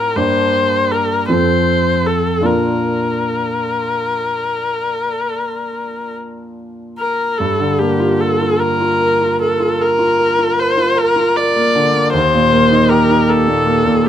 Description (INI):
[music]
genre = classical, romantic duo for viola and grand piano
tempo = 48-54 BPM (dotted quarters)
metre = 12/8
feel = rubato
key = unclear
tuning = A4 = 440 Hz
[part]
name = warm viola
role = melody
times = 0.0-14.1 s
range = G4 to D5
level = -16 LUFS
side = left 2 dB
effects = none
[part]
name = bright concert grand piano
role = accompaniment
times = 0.0-14.1 s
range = Eb2 to Bb4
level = -16 LUFS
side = right 1 dB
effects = none
[sound]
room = light reverb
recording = close, detailed microphones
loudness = -13 LUFS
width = side -10 dB against mid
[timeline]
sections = 0.0-7.4 A section; 7.4-14.1 B section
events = none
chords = 0.2 Gm; 1.3 F; 2.5 Bb; 7.4 Gm7; 12.1 Eb